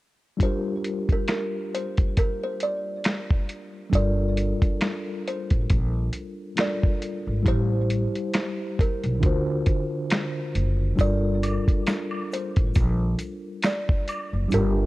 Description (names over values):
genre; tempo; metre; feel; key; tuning
lo-fi hip hop; 68 BPM; 4/4; swing 57% on 16ths; G dorian; A4 = 439 Hz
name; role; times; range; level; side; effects
kalimba; melody; 0.4-14.9 s; Bb4 to D5; -32 LUFS; right 1 dB; low-pass filter
mellow tine electric piano; accompaniment; 0.4-14.9 s; D3 to C5; -29 LUFS; left 1 dB; medium stereo tremolo, cassette tape, low-pass filter
dusty soul sampler-style drum kit; drums; 0.4-14.8 s; finger snaps, hi-hat, kick drum, snare drum; -23 LUFS; equal; vintage 12-bit sampler grit
upright bass; bass; 3.9-14.9 s; F#1 to D2; -24 LUFS; equal; none
tube shaker and woodblock; percussion; 11.0-14.7 s; none; -37 LUFS; equal; none
room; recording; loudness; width
small room ambience; cassette tape; -22 LUFS; side -18 dB against mid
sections
0.4-3.9 A section; 3.9-14.9 B section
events
kick muted 14.5-14.9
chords
0.4 Gm7; 7.5 Am7; 9.2 D7alt; 11.0 Gm7